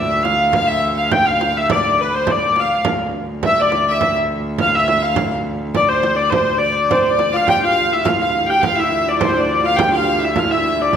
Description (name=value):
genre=medieval dance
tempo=104 BPM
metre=2/4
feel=straight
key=D minor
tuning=A4 = 440 Hz
part: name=dark hurdy-gurdy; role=melody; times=0.0-11.0 s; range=B4 to G5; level=-16 LUFS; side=equal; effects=none
part: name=clear fiddle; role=second line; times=0.0-11.0 s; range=B4 to G5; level=-23 LUFS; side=left 4 dB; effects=none
part: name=rich viola da gamba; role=drone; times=0.0-11.0 s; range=D2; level=-25 LUFS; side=equal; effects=none
part: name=frame drum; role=percussion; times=0.2-11.0 s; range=none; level=-23 LUFS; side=right 4 dB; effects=none
part: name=concert harp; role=second line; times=6.8-11.0 s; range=C4 to G4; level=-23 LUFS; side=right 3 dB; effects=none
room=wet scoring stage reverb, RT60 1.5 s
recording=none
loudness=-14 LUFS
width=side -8 dB against mid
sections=0.0-7.5 A section; 7.5-11.0 B section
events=none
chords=none